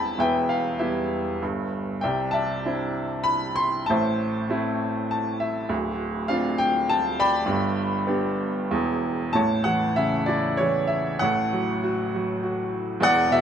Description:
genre	classical, lyrical solo piano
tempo	98 BPM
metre	3/4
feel	uneven beats, rubato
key	C major, A major from 9.3 s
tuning	A4 = 441 Hz
part	clear upright piano	solo	0.0-13.4 s	D1 to C6	-22 LUFS	equal	none
room	light reverb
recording	close, detailed microphones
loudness	-22 LUFS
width	side -8 dB against mid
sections	0.0-9.3 A section; 9.3-13.4 B section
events	upright piano fill 4.8-5.7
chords	0.2 Em; 1.4 N.C.; 2.0 Cadd9; 3.9 Am; 5.7 Dm7; 7.5 G; 8.7 E5; 9.3 A; 11.2 F#m/A

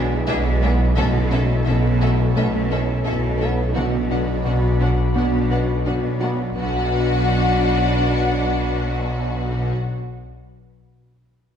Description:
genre	cinematic, hybrid orchestral and electronic film score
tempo	86 BPM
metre	4/4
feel	straight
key	B minor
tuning	A4 = 436 Hz
part	airy breathy pad	sustained chords	0.0-9.7 s	F#3 to B4	-28 LUFS	left 1 dB	chorus, phaser
part	dark French horn section	sustained chords	0.0-9.7 s	D3 to A4	-30 LUFS	left 2 dB	none
part	thumb-piano-like synth pluck	arpeggios	0.0-6.4 s	G#3 to B4	-29 LUFS	right 4 dB	none
part	smooth gliding synth bass	riff	0.0-6.4 s	B2 to B3	-24 LUFS	left 2 dB	none
part	clear symphonic cello section	bass	0.0-9.7 s	B2	-25 LUFS	right 1 dB	none
part	phased detuned saw bass	bass	0.0-9.7 s	B1	-27 LUFS	equal	phaser
part	rich studio double bass section	bass	0.0-9.7 s	B1	-25 LUFS	right 1 dB	none
part	warm symphonic violin section	melody	0.3-9.7 s	E5 to F#5	-29 LUFS	left 5 dB	none
part	rich studio violin section	second line	0.3-9.7 s	F#4 to A4	-30 LUFS	left 1 dB	none
part	clear symphonic viola section	accompaniment	0.3-9.7 s	C#4 to D4	-31 LUFS	right 2 dB	none
room	wet recital hall reverb, RT60 1.6 s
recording	heard from further back in the room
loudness	-18 LUFS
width	side -8 dB against mid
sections	0.0-6.6 A section; 6.6-9.3 B section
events	none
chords	0.0 E7/B; 1.0 A/B; 3.8 Bm

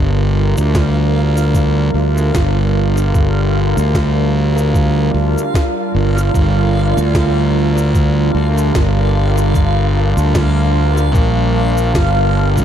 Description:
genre	ambient dub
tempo	75 BPM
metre	4/4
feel	swing 57% on 16ths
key	G minor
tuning	A4 = 437 Hz
part	warbly tape-like pad	sustained chords	0.0-12.6 s	G3 to Bb4	-19 LUFS	right 1 dB	chorus, built-in reverb
part	fuzz fingered electric bass	bass	0.0-12.6 s	G1 to D2	-14 LUFS	equal	overdrive
part	backwards swelling texture	texture	0.8-12.6 s	F5	-25 LUFS	right 1 dB	built-in reverb
part	electronic cabasa and snare drum	drums	0.6-12.6 s	none	-26 LUFS	right 1 dB	overdrive, dub echo
part	electronic kick drum	drums	0.7-12.1 s	none	-16 LUFS	equal	none
room	light reverb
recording	echo-heavy mix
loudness	-12 LUFS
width	side -9 dB against mid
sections	0.0-12.6 A section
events	none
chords	0.0 Gm7

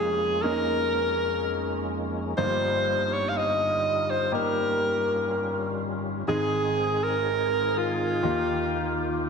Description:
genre	pop ballad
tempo	62 BPM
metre	4/4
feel	straight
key	unclear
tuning	A4 = 441 Hz
part	bright alto saxophone	melody	0.0-9.3 s	F4 to F5	-26 LUFS	equal	tape echo
part	clear concert grand piano	accompaniment	0.0-9.3 s	F1 to Ab4	-30 LUFS	equal	wide subtle chorus
part	tonewheel organ	sustained chords	0.0-9.3 s	Eb2 to Ab4	-32 LUFS	equal	overdrive, chorus vibrato, slow rotary speaker
room	wet lush hall reverb, RT60 2.0 s, small room ambience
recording	dreamy mix soaked in reverb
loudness	-24 LUFS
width	side -5 dB against mid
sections	0.0-9.3 A section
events	none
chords	0.0 Bbm7/F; 2.4 Ebadd9/G; 6.3 Ab; 8.2 Ebadd9

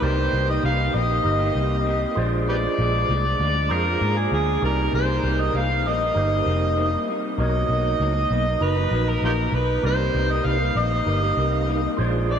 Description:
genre	indie pop, bedroom pop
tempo	98 BPM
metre	4/4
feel	straight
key	unclear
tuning	A4 = 439 Hz
part	overdriven harmonica	melody	0.0-12.4 s	F4 to F5	-24 LUFS	equal	lush chorus, ping-pong delay
part	electric guitar through a small old amp	accompaniment	0.0-12.4 s	Bb2 to G4	-28 LUFS	left 3 dB	wide subtle chorus, warbly pitch drift
part	percussive tonewheel organ	accompaniment	0.0-12.4 s	Eb4 to A#5	-29 LUFS	right 4 dB	fast rotary speaker, cassette tape
part	vintage muted picked electric bass	bass	0.0-12.4 s	F1 to Ab2	-23 LUFS	equal	none
room	moderate huge ambient reverb, RT60 8.5 s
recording	dreamy mix soaked in reverb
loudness	-19 LUFS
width	side -8 dB against mid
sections	0.0-12.4 A section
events	none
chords	0.0 Cm7; 2.2 Bb7; 4.6 Cm7; 7.4 Bmaj7; 9.8 Cm7

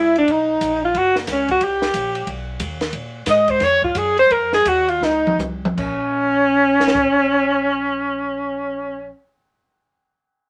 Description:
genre	jazz, small-group swing and bop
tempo	153-180 BPM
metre	4/4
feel	swing 63% on 8ths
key	Bb minor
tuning	A4 = 442 Hz
part	mellow alto saxophone	melody	0.0-9.1 s	A#3 to Eb5	-19 LUFS	equal	none
part	bright tenor saxophone	second line	0.0-9.1 s	A#3 to Eb5	-27 LUFS	equal	none
part	upright bass	bass	0.0-9.1 s	F#1 to Bb2	-34 LUFS	equal	none
part	compact cocktail drum kit	drums	0.2-7.1 s	crash cymbal, hi-hat, kick drum, ride cymbal, snare drum, toms	-29 LUFS	equal	none
room	light reverb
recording	none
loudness	-19 LUFS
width	mono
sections	0.0-5.8 A section; 5.8-8.9 B section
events	slowing down 2.9-5.8; drum fill 5.0-5.8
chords	0.3 Bmaj7; 1.6 C5; 2.3 B; 2.9 Bbm7; 5.8 Bbm

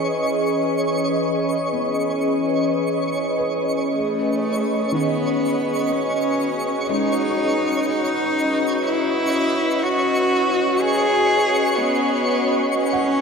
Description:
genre	ambient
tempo	61 BPM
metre	4/4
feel	straight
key	unclear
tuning	A4 = 440 Hz
part	glassy FM pad	sustained chords	0.0-13.2 s	E3 to D#5	-21 LUFS	left 1 dB	ensemble chorus, built-in reverb
part	felt-muted upright piano	arpeggios	0.0-13.2 s	D#3 to F#5	-32 LUFS	left 2 dB	ping-pong delay
part	twinkling granular texture	texture	0.0-13.2 s	C#5 to C#6	-27 LUFS	right 1 dB	built-in reverb
part	warm cello	melody	4.0-13.2 s	A3 to G#4	-21 LUFS	equal	ping-pong delay
room	wet huge ambient reverb, RT60 9.6 s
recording	none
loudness	-18 LUFS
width	side -5 dB against mid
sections	0.0-13.2 A section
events	fade-in on felt piano 0.0-13.2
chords	0.0 C#m9; 4.0 Badd9

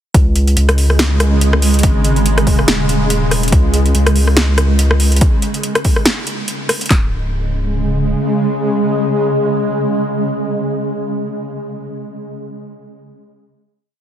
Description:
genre	deep dubstep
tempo	142 BPM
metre	4/4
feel	swing 56% on 16ths, half-time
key	unclear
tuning	A4 = 439 Hz
part	granular cloud pad	sustained chords	0.6-11.1 s	C#3 to G#3	-18 LUFS	right 1 dB	built-in reverb
part	saturated sub bass	bass	0.1-8.1 s	C#1 to C#2	-14 LUFS	equal	none
part	deep house drum kit	drums	0.1-7.0 s	handclaps, kick drum, snare drum	-13 LUFS	equal	overdrive
part	deep house drum kit	drums	0.1-6.9 s	hi-hat, rim click, snare drum	-17 LUFS	equal	overdrive
room	digital ambience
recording	heavily compressed radio sound, multiband compression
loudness	-12 LUFS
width	side -10 dB against mid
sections	0.1-6.9 drop; 6.9-10.3 final chord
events	drop 0.1-6.9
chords	0.1 C#5

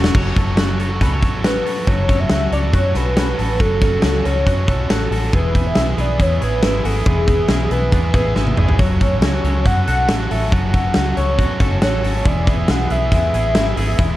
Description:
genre	jangly indie pop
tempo	139 BPM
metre	4/4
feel	straight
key	F# minor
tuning	A4 = 440 Hz
part	overdriven electric guitar	accompaniment	0.0-14.2 s	E3 to C#5	-25 LUFS	right 2 dB	none
part	twelve-string electric guitar	arpeggios	0.0-14.2 s	E3 to C#5	-26 LUFS	left 2 dB	wide subtle chorus
part	vintage muted fingered electric bass	bass	0.0-14.2 s	E1 to F#2	-20 LUFS	equal	none
part	big rock drum kit	drums	0.0-14.1 s	crash cymbal, hi-hat, kick drum, snare drum, toms	-18 LUFS	equal	none
part	warm velvety synth lead	melody	1.4-14.2 s	G#4 to F#5	-22 LUFS	equal	chorus
room	light reverb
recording	cassette tape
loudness	-14 LUFS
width	side -15 dB against mid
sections	0.1-1.9 A section; 1.9-14.2 B section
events	drum fill 8.4-8.8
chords	0.1 F#m; 5.3 E; 8.8 F#m; 12.3 E

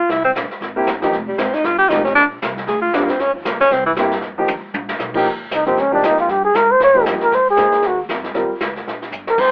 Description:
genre	jazz, small-group swing and bop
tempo	232 BPM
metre	4/4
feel	swing 58% on 8ths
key	Eb mixolydian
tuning	A4 = 437 Hz
part	breathy tenor saxophone	second line	0.0-3.9 s	E3 to Ab4	-17 LUFS	equal	none
part	upright bass	bass	0.1-9.5 s	F1 to Bb2	-35 LUFS	equal	none
part	jazz brush drum kit	drums	0.1-9.5 s	brushed snare drum, crash cymbal, hi-hat, kick drum, snare drum, toms	-26 LUFS	equal	none
part	dark baby grand piano	accompaniment	0.8-8.5 s	D3 to C5	-22 LUFS	equal	none
part	breathy flugelhorn	melody	5.5-9.5 s	C4 to Db5	-16 LUFS	equal	none
room	moderate club reverb, RT60 0.5 s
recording	worn, warbling old tape, cassette tape, warbly pitch drift, telephone sound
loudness	-17 LUFS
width	mono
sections	0.0-5.3 A section; 5.3-9.5 A section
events	tenor saxophone solo 0.0-5.3; drum fill 4.5-5.0, 9.1; flugelhorn solo 5.3-9.5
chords	0.1 C7(no3); 1.1 Fm7; 2.2 Bb; 3.2 Db69; 3.7 C7; 4.2 Ebadd9; 4.7 Bb5; 5.3 Eb7; 7.3 Ab; 8.4 Eb7

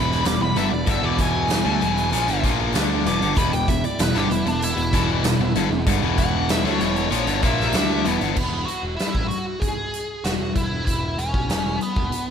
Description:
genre	classic rock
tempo	96 BPM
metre	4/4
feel	straight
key	E major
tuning	A4 = 440 Hz
part	dark smooth lead guitar	melody	0.0-12.3 s	B3 to D6	-26 LUFS	equal	wah, overdrive, slapback echo, digital delay
part	picked steel-string acoustic guitar	accompaniment	0.0-8.4 s	E2 to E4	-31 LUFS	right 5 dB	none
part	biting overdriven guitar	riff	0.0-8.4 s	E2 to D4	-25 LUFS	left 11 dB	slapback echo
part	sludgy distorted guitar	riff	0.0-8.4 s	E2 to D4	-27 LUFS	right 10 dB	overdrive
part	fuzz picked electric bass	bass	0.0-12.3 s	E1 to D2	-26 LUFS	equal	overdrive
part	huge arena drum kit	drums	0.1-12.3 s	crash cymbal, hi-hat, kick drum, snare drum	-24 LUFS	equal	none
part	tambourine	percussion	0.3-8.3 s	none	-44 LUFS	right 9 dB	none
room	moderate concert hall reverb, RT60 2.1 s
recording	big arena sound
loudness	-19 LUFS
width	side -8 dB against mid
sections	0.0-8.4 A section; 8.4-12.3 B section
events	lead electric guitar solo 0.0-8.4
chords	0.0 E; 8.4 E5

